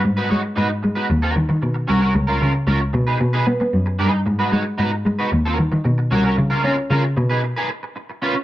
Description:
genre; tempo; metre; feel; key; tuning
disco; 114 BPM; 4/4; straight; unclear; A4 = 437 Hz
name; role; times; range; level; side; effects
electric guitar at the edge of break-up; accompaniment; 0.0-8.4 s; Db4 to Db5; -22 LUFS; right 2 dB; ensemble chorus
warm cello; bass; 0.0-7.3 s; C2 to Db4; -18 LUFS; equal; none
room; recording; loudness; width
small room reverb; dark, warm production; -17 LUFS; side -14 dB against mid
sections
0.0-8.4 A section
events
break 7.4-8.4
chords
0.0 Abm7; 1.1 Ebm7; 2.1 Db6; 2.9 B6; 4.3 Abm7; 5.3 Ebm7; 6.4 Db6; 7.2 B6

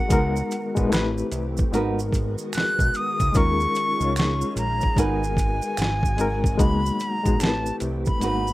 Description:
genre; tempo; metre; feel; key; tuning
R&B, neo-soul; 74 BPM; 4/4; swing 64% on 16ths; G# dorian; A4 = 438 Hz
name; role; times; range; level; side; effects
bright silver concert flute; melody; 0.0-8.5 s; F#5 to F#6; -26 LUFS; left 1 dB; none
reed electric piano; accompaniment; 0.0-8.5 s; G#3 to C#5; -26 LUFS; left 2 dB; fast tremolo
soft string machine; sustained chords; 0.0-8.5 s; B2 to A#4; -34 LUFS; equal; phaser, ensemble chorus
fat analog bass; bass; 0.1-8.5 s; G#1 to D#2; -27 LUFS; equal; none
boom bap sampler-style drum kit; drums; 0.1-8.5 s; hi-hat, kick drum, snare drum; -23 LUFS; equal; none
maracas and finger snaps; percussion; 0.1-8.5 s; none; -36 LUFS; right 6 dB; none
flamenco guitar; second line; 1.7-8.5 s; D#4 to B4; -26 LUFS; right 6 dB; none
room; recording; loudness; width
little or no reverb; rough home demo mix; -20 LUFS; side -17 dB against mid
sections
0.0-8.5 A section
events
none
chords
0.1 C#13sus4; 0.9 Am7; 1.7 G#m7; 3.3 D#9sus4; 5.0 G#m7; 5.8 G#9; 6.6 C#13sus4; 7.4 Am7

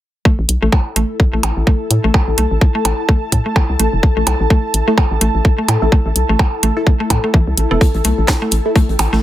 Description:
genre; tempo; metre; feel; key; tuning
minimal techno; 127 BPM; 4/4; swing 57% on 16ths; unclear; A4 = 440 Hz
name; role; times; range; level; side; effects
mallet-like synth pluck; riff; 0.3-9.2 s; E3 to B3; -22 LUFS; equal; chorus, sidechain pumping, tape echo
electronic kick drum; drums; 0.3-8.9 s; none; -12 LUFS; equal; none
ethereal airy pad; texture; 0.9-9.2 s; E4 to A5; -22 LUFS; left 1 dB; ensemble chorus, built-in reverb, sidechain pumping
hollow knocking FM bass; bass; 0.4-9.2 s; E1 to A2; -16 LUFS; equal; sidechain pumping
garage drum kit; drums; 0.5-9.1 s; hi-hat, snare drum; -16 LUFS; equal; none
percussion blips; percussion; 0.7-9.1 s; none; -23 LUFS; right 4 dB; dub echo
filtered dub chord stab; stabs; 4.9-8.7 s; A3 to A4; -22 LUFS; right 1 dB; phaser, dub echo
huge arena drum kit; drums; 7.8-9.2 s; hi-hat, snare drum; -30 LUFS; left 4 dB; sidechain pumping on hats, high-pass filter on hats, high-pass filter on snare, high-pass filter on room
room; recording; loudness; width
light reverb; none; -12 LUFS; side -13 dB against mid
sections
0.3-9.2 A section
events
none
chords
0.3 A5

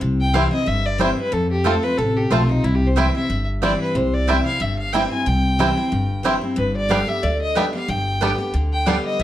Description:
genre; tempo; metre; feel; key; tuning
bluegrass; 183 BPM; 4/4; swing 55% on 8ths; C major; A4 = 441 Hz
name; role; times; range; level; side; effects
picked steel-string acoustic guitar; accompaniment; 0.0-9.2 s; F2 to G4; -23 LUFS; left 2 dB; none
upright bass; bass; 0.0-9.2 s; G1 to F2; -22 LUFS; equal; none
rich fiddle; melody; 0.2-9.2 s; Eb4 to Ab5; -24 LUFS; equal; none
mandolin; stabs; 0.3-9.0 s; B3 to A5; -25 LUFS; right 3 dB; none
bluegrass banjo; arpeggios; 0.4-9.0 s; G3 to F4; -24 LUFS; right 2 dB; none
room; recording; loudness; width
light reverb; dark, warm production; -17 LUFS; side -12 dB against mid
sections
0.0-9.2 A section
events
fiddle solo 0.0-9.2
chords
0.0 C; 1.3 F; 2.6 C; 6.6 G

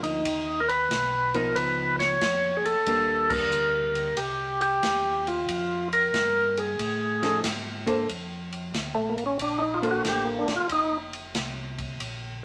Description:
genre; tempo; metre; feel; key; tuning
soul jazz organ trio; 92 BPM; 4/4; swing 67% on 8ths; Bb major from 8.1 s; A4 = 442 Hz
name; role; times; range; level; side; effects
percussive tonewheel organ; melody; 0.0-11.0 s; A3 to Db5; -27 LUFS; equal; slow rotary speaker
hollow-body jazz guitar; accompaniment; 0.0-10.7 s; F3 to C5; -32 LUFS; equal; none
mellow tonewheel organ; bass; 0.0-12.4 s; F1 to A2; -40 LUFS; equal; slow rotary speaker
swinging big-band drum kit; drums; 0.0-12.2 s; crash cymbal, hi-hat, kick drum, ride cymbal, snare drum; -36 LUFS; equal; none
room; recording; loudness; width
moderate studio reverb, RT60 0.8 s; none; -26 LUFS; mono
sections
0.0-8.1 A section; 8.1-12.4 B section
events
band accent 3.2-3.5; tonewheel organ solo 8.1-12.4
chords
0.3 Bmaj7#11; 1.6 Db9; 2.9 Ebmaj7; 4.2 Cm; 5.5 Fmadd9; 6.8 F7alt; 8.1 Bbmaj9; 10.7 F5

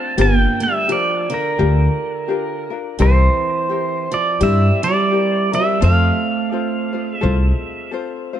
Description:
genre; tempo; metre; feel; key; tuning
Hawaiian; 85 BPM; 4/4; swing 59% on 8ths; F major; A4 = 440 Hz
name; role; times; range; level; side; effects
pedal steel guitar; melody; 0.0-7.9 s; Bb4 to A5; -20 LUFS; right 2 dB; ping-pong delay
picked steel-string acoustic guitar; second line; 0.0-7.9 s; D3 to C4; -23 LUFS; right 5 dB; none
ukulele; accompaniment; 0.0-8.4 s; C4 to C5; -24 LUFS; left 8 dB; none
upright bass; bass; 0.2-7.5 s; G1 to G2; -14 LUFS; equal; none
room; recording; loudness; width
light reverb; nothing above 10.7 kHz; -15 LUFS; side -10 dB against mid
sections
0.0-8.4 A section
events
none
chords
0.2 Gm7; 3.0 C7; 5.8 F

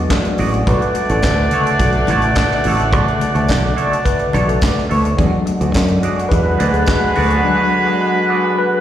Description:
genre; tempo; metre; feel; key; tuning
disco; 106 BPM; 4/4; straight; B dorian; A4 = 438 Hz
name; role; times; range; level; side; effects
mellow tine electric piano; accompaniment; 0.0-8.8 s; C#3 to D5; -20 LUFS; left 3 dB; medium stereo tremolo, slapback echo
mellow French horn section; sustained chords; 0.0-8.8 s; B2 to D5; -24 LUFS; left 1 dB; none
fingered electric bass; bass; 0.0-7.4 s; A1 to F#2; -17 LUFS; right 1 dB; none
clean electric guitar; accompaniment; 0.1-8.8 s; D4 to D5; -24 LUFS; right 3 dB; wah, slapback echo
tight funk drum kit; drums; 0.1-7.4 s; handclaps, hi-hat, kick drum, snare drum; -20 LUFS; equal; none
congas; percussion; 0.1-7.3 s; none; -26 LUFS; left 3 dB; none
clear horn section; stabs; 0.7-8.8 s; G#3 to D5; -18 LUFS; right 1 dB; slapback echo
tambourine; percussion; 1.2-7.0 s; none; -34 LUFS; right 3 dB; slapback echo
room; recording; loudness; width
light reverb, studio reverb; live gig heard through the venue's PA, recital hall reverb; -13 LUFS; side -11 dB against mid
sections
0.0-8.8 A section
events
tine electric piano solo 0.0-8.8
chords
0.0 E9 (rootless); 0.7 Bm9; 5.2 E9 (rootless)

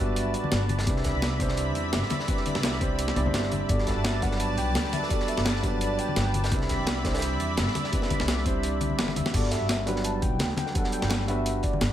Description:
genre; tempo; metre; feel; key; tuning
liquid drum and bass; 170 BPM; 4/4; swing 53% on 16ths; G major; A4 = 439 Hz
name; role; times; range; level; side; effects
warm velvety synth lead; melody; 0.0-1.4, 3.5-7.0, 9.2-11.9 s; D5 to A5; -35 LUFS; left 1 dB; chorus, tape echo
dark baby grand piano; accompaniment; 0.0-11.9 s; F#3 to D5; -30 LUFS; right 1 dB; tape echo
lush unison pad; sustained chords; 0.0-9.3 s; B4 to B5; -33 LUFS; equal; chorus
upright bass; bass; 0.0-11.9 s; G1 to E2; -29 LUFS; equal; none
breakbeat sampler-style drum kit; drums; 0.2-11.9 s; crash cymbal, hi-hat, snare drum, toms; -31 LUFS; equal; studio reverb
crunchy breakbeat drum kit; drums; 0.2-11.9 s; hi-hat, snare drum; -37 LUFS; equal; high-pass filter on hats, studio reverb, high-pass filter on snare, high-pass filter on room
congas; percussion; 0.4-11.8 s; none; -34 LUFS; left 4 dB; none
electronic kick drum; drums; 0.9-11.7 s; none; -29 LUFS; equal; studio reverb
room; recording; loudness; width
moderate plate reverb, RT60 1.1 s, studio reverb; dreamy mix soaked in reverb; -24 LUFS; side -11 dB against mid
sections
0.0-9.3 A section; 9.3-11.9 A section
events
drop 0.0-9.3, 9.3-11.9; drum fill 9.0-9.3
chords
0.0 Gmaj9; 0.9 Cmaj9; 3.7 Gmaj9; 6.5 Cmaj9; 9.3 Gmaj9

